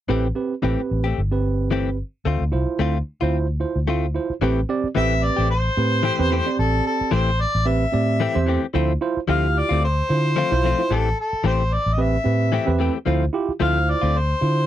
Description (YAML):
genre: blues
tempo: 111 BPM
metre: 4/4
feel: swing 55% on 16ths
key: A minor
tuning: A4 = 441 Hz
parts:
  - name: tine electric piano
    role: accompaniment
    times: 0.1-14.7 s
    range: C4 to D5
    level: -24 LUFS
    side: right 6 dB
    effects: none
  - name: direct-recorded clean electric guitar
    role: stabs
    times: 0.1-14.2 s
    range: E3 to G4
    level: -25 LUFS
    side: left 8 dB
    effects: none
  - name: vintage muted fingered electric bass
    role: bass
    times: 0.1-14.7 s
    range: G1 to D3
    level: -22 LUFS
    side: equal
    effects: none
  - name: mellow harmonica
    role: melody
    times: 5.0-14.7 s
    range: A4 to F5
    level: -23 LUFS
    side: left 2 dB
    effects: overdrive, slapback echo
room: little or no reverb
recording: dry, close 1970s-style studio recording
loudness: -19 LUFS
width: side -12 dB against mid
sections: 0.1-4.4 A section; 4.4-14.7 B section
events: none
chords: 0.1 Am7; 2.3 Dm7; 4.4 Am7; 8.7 Dm7; 10.9 Am7; 13.1 Dm7